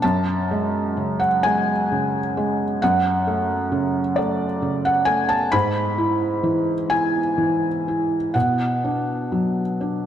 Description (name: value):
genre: neoclassical minimalist piano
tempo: 43 BPM (dotted quarters)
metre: 6/8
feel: uneven beats, rubato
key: F# minor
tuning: A4 = 439 Hz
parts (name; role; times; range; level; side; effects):
- felt-muted upright piano; solo; 0.0-10.1 s; F#2 to B5; -19 LUFS; equal; none
room: wet plate reverb, RT60 3.1 s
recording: heard from further back in the room, nothing above 10.7 kHz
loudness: -19 LUFS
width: side -10 dB against mid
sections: 0.0-10.1 A section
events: none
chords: 0.0 F#madd9; 5.5 E/G#; 8.3 Bm